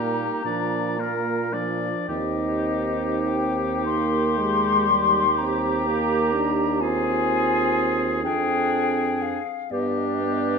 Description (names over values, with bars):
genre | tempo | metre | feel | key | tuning
classical, slow romantic movement for wind quintet | 33-43 BPM (dotted quarters) | 6/8 | rubato | Eb major | A4 = 440 Hz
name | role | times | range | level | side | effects
mellow hollow silver concert flute | melody | 0.0-10.6 s | D5 to C6 | -26 LUFS | left 5 dB | none
warm oboe | second line | 0.0-10.6 s | G4 to D5 | -28 LUFS | left 5 dB | none
bright clarinet | accompaniment | 0.0-10.6 s | D4 to G4 | -29 LUFS | right 10 dB | none
mellow French horn | accompaniment | 0.0-10.6 s | F3 to D4 | -28 LUFS | equal | none
dark bassoon | bass | 0.0-10.6 s | Eb2 to Bb2 | -28 LUFS | right 4 dB | none
room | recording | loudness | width
wet recital hall reverb, RT60 1.7 s | none | -21 LUFS | side -5 dB against mid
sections
0.0-10.6 A section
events
none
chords
0.4 Bb; 2.1 Eb; 5.4 C5/Eb; 6.8 Fm/Eb; 8.2 Dm7b5/F; 9.7 G